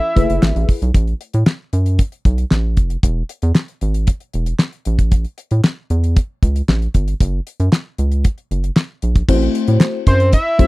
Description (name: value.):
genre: early-eighties boogie funk.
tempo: 115 BPM.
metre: 4/4.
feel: straight.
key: unclear.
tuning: A4 = 443 Hz.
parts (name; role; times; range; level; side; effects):
fat analog lead; melody; 0.0-0.7, 10.1-10.7 s; C5 to E5; -18 LUFS; equal; slapback echo.
FM electric piano with soft pad layer; accompaniment; 0.2-0.7, 9.3-10.7 s; A3 to C5; -19 LUFS; left 4 dB; chorus.
rubbery square bass; bass; 0.2-10.7 s; E1 to A2; -16 LUFS; equal; none.
damped 70s drum kit; drums; 0.2-10.7 s; crash cymbal, handclaps, hi-hat, kick drum, snare drum; -14 LUFS; equal; none.
room: little or no reverb.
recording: dry, close 1970s-style studio recording.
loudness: -14 LUFS.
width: side -21 dB against mid.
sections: 0.9-9.3 A section; 9.3-10.7 B section.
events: none.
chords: 0.0 F#m11; 0.9 F; 3.0 E; 4.9 A5; 7.2 F#5; 9.3 Am6.